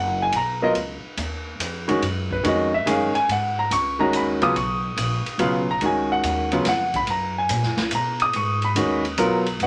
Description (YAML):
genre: modal jazz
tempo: 142 BPM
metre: 3/4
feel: swing 68% on 8ths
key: G# dorian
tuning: A4 = 440 Hz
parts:
  - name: clear grand piano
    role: accompaniment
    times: 0.0-9.7 s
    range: C#3 to D#6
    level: -23 LUFS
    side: equal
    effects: none
  - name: upright bass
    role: bass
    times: 0.0-9.7 s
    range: F#1 to B2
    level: -32 LUFS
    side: equal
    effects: none
  - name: swinging big-band drum kit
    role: drums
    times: 0.3-9.7 s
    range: hi-hat, kick drum, ride cymbal, snare drum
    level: -32 LUFS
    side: equal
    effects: none
room: moderate studio reverb, RT60 0.7 s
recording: none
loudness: -22 LUFS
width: mono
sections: 0.0-9.7 A section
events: none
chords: 0.0 G#m7; 0.8 C#sus4; 3.3 G#m7; 5.8 Bsus2; 8.3 G#m7